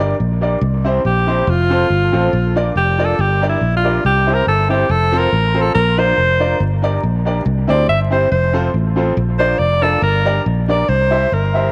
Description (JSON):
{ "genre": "ska", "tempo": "140 BPM", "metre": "4/4", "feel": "swing 54% on 8ths", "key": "F major", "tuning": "A4 = 441 Hz", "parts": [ { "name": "electric guitar through a small old amp", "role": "accompaniment", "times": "0.0-11.7 s", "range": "D4 to D5", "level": "-28 LUFS", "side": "equal", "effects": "lush chorus, tape echo" }, { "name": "warm upright piano", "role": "stabs", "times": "0.0-11.7 s", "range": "C4 to E5", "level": "-24 LUFS", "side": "equal", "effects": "none" }, { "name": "fingered electric bass", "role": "bass", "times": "0.0-11.7 s", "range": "F1 to D2", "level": "-19 LUFS", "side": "equal", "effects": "none" }, { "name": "bright alto saxophone", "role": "melody", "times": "1.1-11.7 s", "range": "E4 to E5", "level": "-19 LUFS", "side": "equal", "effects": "none" } ], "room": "moderate spring reverb, RT60 2.3 s", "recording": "vinyl crackle", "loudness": "-16 LUFS", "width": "mono", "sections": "0.0-11.7 A section", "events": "alto saxophone solo 0.0-11.7", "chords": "0.0 Gm; 0.6 C; 1.5 F; 2.3 Bb; 3.2 Gm; 4.0 C; 4.9 F; 5.8 Bb; 6.6 Gm; 7.5 C; 8.3 F; 9.2 Bb; 10.0 Gm; 10.9 C" }